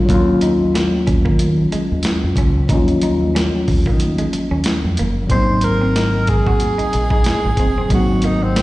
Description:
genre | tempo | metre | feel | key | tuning
R&B, neo-soul | 92 BPM | 4/4 | swing 55% on 16ths | unclear | A4 = 440 Hz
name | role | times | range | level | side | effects
mellow tine electric piano | accompaniment | 0.0-8.6 s | F3 to F4 | -19 LUFS | left 1 dB | lush chorus, slapback echo
deep dub fingered electric bass | bass | 0.0-8.6 s | Gb1 to Eb3 | -19 LUFS | equal | none
boom bap sampler-style drum kit | drums | 0.1-8.6 s | hi-hat, kick drum, snare drum | -19 LUFS | equal | overdrive
congas | percussion | 0.1-8.6 s | none | -31 LUFS | right 1 dB | none
electric guitar through a small old amp | second line | 0.4-8.4 s | Ab3 to Gb4 | -27 LUFS | right 3 dB | spring reverb, slapback echo
breathy tenor saxophone | melody | 5.3-8.6 s | C4 to C5 | -20 LUFS | right 1 dB | slapback echo
room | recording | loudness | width
light reverb | live gig heard through the venue's PA, recital hall reverb, nothing above 10.3 kHz | -14 LUFS | side -18 dB against mid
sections
0.0-5.3 A section; 5.3-8.6 B section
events
break 4.0-5.3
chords
0.1 Ebm7; 5.3 Ab9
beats
| 0.09 0.74 1.39 2.04 | 2.69 3.35 4.00 4.65 | 5.30 5.96 6.61 7.26 | 7.91 8.56

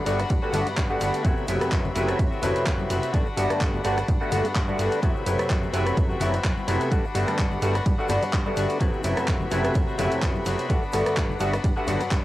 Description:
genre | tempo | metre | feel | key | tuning
filtered disco house | 127 BPM | 4/4 | swing 55% on 16ths | G major | A4 = 440 Hz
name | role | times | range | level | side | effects
auto-wah clav | accompaniment | 0.0-12.0 s | C3 to B4 | -26 LUFS | equal | overdrive, phaser, sidechain pumping
rich chamber string section | sustained chords | 0.0-12.2 s | G3 to B5 | -34 LUFS | equal | sidechain pumping
direct-recorded clean electric guitar | riff | 0.0-12.2 s | E3 to F#4 | -32 LUFS | left 5 dB | sidechain pumping
plucky analog bass | bass | 0.1-12.2 s | F#1 to G2 | -28 LUFS | equal | sidechain pumping
house drum kit | drums | 0.1-12.2 s | handclaps, hi-hat, ride cymbal, rim click | -32 LUFS | right 1 dB | sidechain pumping on hats, sidechain pumping on cymbals
egg shaker and congas | percussion | 0.1-12.2 s | none | -37 LUFS | left 5 dB | sidechain pumping on perc
electronic kick drum | drums | 0.3-12.2 s | none | -24 LUFS | equal | none
room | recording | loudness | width
moderate small room reverb, RT60 0.5 s | home recording on cassette | -21 LUFS | side -15 dB against mid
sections
0.0-12.2 A section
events
none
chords
0.0 Gmaj7; 1.2 Am69/F#; 3.1 Gmaj7; 5.0 Am69/F#; 6.9 Gmaj7; 8.8 Am69/F#; 10.7 Gmaj7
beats
0.30 0.78 | 1.25 1.72 2.19 2.66 | 3.14 3.61 4.08 4.55 | 5.03 5.50 5.97 6.44 | 6.92 7.39 7.86 8.33 | 8.81 9.28 9.75 10.22 | 10.70 11.17 11.64 12.11

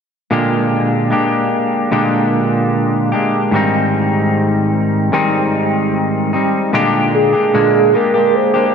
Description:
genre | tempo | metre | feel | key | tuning
indie pop | 75 BPM | 4/4 | straight | unclear | A4 = 444 Hz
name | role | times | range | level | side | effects
clean electric guitar | accompaniment | 0.3-8.7 s | Ab2 to G4 | -13 LUFS | equal | wide subtle chorus, vibrato effect
warbly nostalgic lead | melody | 7.1-8.7 s | Ab4 to C5 | -12 LUFS | right 3 dB | lush chorus, analog delay
room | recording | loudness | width
wet cathedral reverb, RT60 4.4 s | dreamy mix soaked in reverb | -12 LUFS | side -6 dB against mid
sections
0.3-6.7 A section; 6.7-8.7 B section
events
none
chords
0.3 Bb6; 3.5 Abmaj7; 6.7 Bb13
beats
| 0.31 1.12 1.92 2.72 | 3.52 4.33 5.13 5.93 | 6.73 7.53 8.34

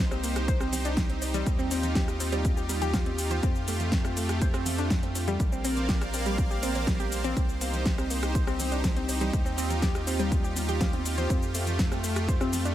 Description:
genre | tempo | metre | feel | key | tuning
progressive house | 122 BPM | 4/4 | straight | C dorian | A4 = 440 Hz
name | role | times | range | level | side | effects
supersaw pad | sustained chords | 0.0-12.7 s | A3 to F5 | -34 LUFS | right 2 dB | sidechain pumping
round analog bass | bass | 0.0-12.7 s | Bb1 to F2 | -31 LUFS | equal | sidechain pumping
soft round pluck | arpeggios | 0.1-12.7 s | G3 to C5 | -32 LUFS | left 1 dB | chorus, sidechain pumping, tape echo
pop drum kit | drums | 0.1-12.7 s | hi-hat, rim click, shaker, snare drum | -33 LUFS | equal | overdrive
bongos and congas | percussion | 0.1-12.6 s | none | -41 LUFS | right 3 dB | overdrive, sidechain pumping on perc
electronic kick drum | drums | 0.5-12.4 s | none | -27 LUFS | equal | overdrive
room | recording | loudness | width
digital ambience | none | -25 LUFS | side -12 dB against mid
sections
0.0-12.7 A section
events
none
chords
0.0 Cm; 1.5 Ebadd9; 3.4 Fadd9; 5.4 Bbadd9; 7.4 Cm; 9.3 Ebadd9; 11.3 Fadd9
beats
0.48 0.97 | 1.47 1.96 2.45 2.94 | 3.43 3.92 4.42 4.91 | 5.40 5.89 6.38 6.88 | 7.37 7.86 8.35 8.84 | 9.33 9.82 10.32 10.81 | 11.30 11.79 12.28

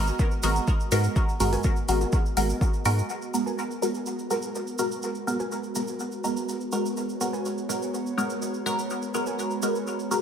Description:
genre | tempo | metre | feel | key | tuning
dub techno | 124 BPM | 4/4 | straight | G# minor | A4 = 440 Hz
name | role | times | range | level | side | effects
airy breathy pad | sustained chords | 0.0-10.2 s | G#3 to D#5 | -34 LUFS | right 1 dB | chorus, sidechain pumping
filtered dub chord stab | stabs | 0.0-10.2 s | G#3 to A#4 | -28 LUFS | equal | phaser, dub echo
round analog bass | bass | 0.0-3.0 s | G#1 to G#2 | -25 LUFS | equal | sidechain pumping
tube shaker | percussion | 0.1-10.2 s | none | -37 LUFS | right 4 dB | none
electronic kick drum | drums | 0.2-2.7 s | none | -24 LUFS | equal | none
electronic bongos and toms | percussion | 0.2-2.1 s | none | -38 LUFS | left 2 dB | none
electronic hi-hat | drums | 0.4-3.0 s | none | -35 LUFS | left 1 dB | low-pass filter on hats, low-pass filter on room
warbly dusty pluck | riff | 1.5-9.4 s | F#4 to G#5 | -40 LUFS | right 2 dB | none
wind-like tuned noise texture | texture | 4.3-10.2 s | B3 | -40 LUFS | right 2 dB | none
room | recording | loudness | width
moderate echo chamber reverb, RT60 1.7 s | none | -24 LUFS | side -8 dB against mid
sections
0.0-3.1 A section; 3.1-10.2 B section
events
none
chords
0.0 G#m9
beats
0.19 0.68 | 1.16 1.64 2.13 2.61 | 3.10 3.58 4.06 4.55 | 5.03 5.51 6.00 6.48 | 6.97 7.45 7.93 8.42 | 8.90 9.39 9.87

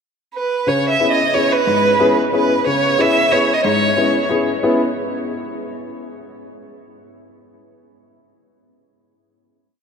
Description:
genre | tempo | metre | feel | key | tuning
musette | 182 BPM | 3/4 | swing 53% on 8ths | C# minor | A4 = 441 Hz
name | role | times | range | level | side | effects
rich violin | melody | 0.3-4.3 s | B4 to E5 | -16 LUFS | right 2 dB | none
warm upright piano | accompaniment | 0.7-4.8 s | G#2 to G#4 | -18 LUFS | left 2 dB | none
room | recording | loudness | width
wet cathedral reverb, RT60 5.3 s | in a vast, echoing space | -14 LUFS | side -6 dB against mid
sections
0.0-0.7 pickup bar; 0.7-4.6 A section; 4.6-5.6 final chord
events
none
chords
0.0 N.C.; 0.7 C#m7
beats
0.33 | 0.66 1.00 1.33 | 1.67 2.00 2.33 | 2.67 2.99 3.32 | 3.65 3.98 4.31 | 4.64

